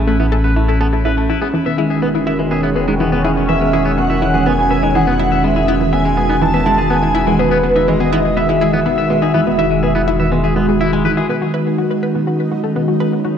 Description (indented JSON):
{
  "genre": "ambient, sequencer-driven space music",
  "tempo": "123 BPM",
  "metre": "4/4",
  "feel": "straight",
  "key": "unclear",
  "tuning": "A4 = 441 Hz",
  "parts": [
    { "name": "sweeping resonant pad", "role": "sustained chords", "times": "0.0-13.4 s", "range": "D#3 to G#4", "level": "-17 LUFS", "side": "right 1 dB", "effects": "chorus, shimmer reverb" },
    { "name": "twangy electric guitar", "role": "arpeggios", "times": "0.0-13.3 s", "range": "F#3 to E5", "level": "-23 LUFS", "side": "moving between left 6 dB and right 1 dB", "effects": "auto-pan, shimmer reverb, ping-pong delay" },
    { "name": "analog pluck", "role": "riff", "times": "0.0-13.3 s", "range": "E3 to B4", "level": "-20 LUFS", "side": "left 1 dB", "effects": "chorus, vintage 12-bit sampler grit, shimmer reverb, ping-pong delay" },
    { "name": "warm sub bass", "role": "bass", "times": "0.0-11.3 s", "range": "E1 to A1", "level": "-20 LUFS", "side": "equal", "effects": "none" },
    { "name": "breathy flute-like synth lead", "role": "melody", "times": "3.5-10.8 s", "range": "B4 to A5", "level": "-18 LUFS", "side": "equal", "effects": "ensemble chorus, shimmer reverb, ping-pong delay" },
    { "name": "bubbling stepped-filter texture", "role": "texture", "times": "11.6-13.4 s", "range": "D#4 to D#5", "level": "-26 LUFS", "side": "equal", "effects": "chorus, built-in reverb, shimmer reverb" }
  ],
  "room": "wet spring reverb, RT60 2.3 s",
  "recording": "echo-heavy mix",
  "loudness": "-13 LUFS",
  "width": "side -8 dB against mid",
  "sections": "0.0-11.3 A section; 11.3-13.4 B section",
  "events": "none",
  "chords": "0.0 Aadd9; 1.5 E; 11.3 Badd9"
}